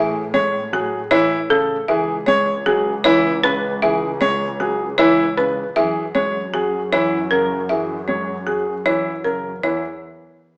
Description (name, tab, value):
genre	classical, minimalist pattern music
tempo	155 BPM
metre	5/4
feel	straight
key	unclear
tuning	A4 = 440 Hz
part	folk marimba with hard mallets	melody	0.0-9.8 s	G#4 to E5	-24 LUFS	equal	none
part	dark baby grand piano	accompaniment	0.0-9.8 s	C#3 to G#3	-27 LUFS	equal	none
part	warm concert grand piano	arpeggios	0.0-9.8 s	E4 to C#5	-23 LUFS	equal	none
part	warm symphonic double bass section	bass	0.0-9.8 s	C#2 to A2	-32 LUFS	equal	none
room	wet large studio reverb, RT60 1.2 s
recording	small speaker sound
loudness	-19 LUFS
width	mono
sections	0.0-9.6 A section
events	none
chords	0.0 Amaj7; 1.9 C#m7; 5.8 F#7; 9.6 N.C.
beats	0.34 0.73 1.12 1.50 | 1.89 2.28 2.67 3.05 3.44 | 3.83 4.21 4.60 4.99 5.38 | 5.76 6.15 6.54 6.92 7.31 | 7.70 8.09 8.47 8.86 9.25 | 9.63